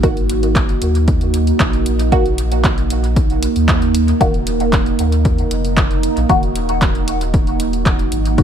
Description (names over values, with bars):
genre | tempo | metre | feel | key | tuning
dub techno | 115 BPM | 4/4 | straight | Eb minor | A4 = 441 Hz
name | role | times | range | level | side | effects
deep dark ambient pad | sustained chords | 0.0-8.4 s | Bb3 to Bb4 | -20 LUFS | right 4 dB | chorus, built-in reverb, sidechain pumping
filtered dub chord stab | stabs | 0.0-8.4 s | Eb3 to Gb4 | -22 LUFS | left 1 dB | chorus, phaser, sidechain pumping, dub echo
warm sub bass | bass | 0.0-8.4 s | Eb1 to Eb2 | -19 LUFS | equal | sidechain pumping
deep house drum kit | drums | 0.0-8.4 s | handclaps, hi-hat | -24 LUFS | right 1 dB | overdrive, studio reverb, dub echo
electronic kick drum | drums | 0.0-8.4 s | none | -17 LUFS | equal | overdrive, studio reverb
room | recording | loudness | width
digital ambience | none | -13 LUFS | side -8 dB against mid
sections
0.0-8.4 A section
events
none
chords
0.0 Ebm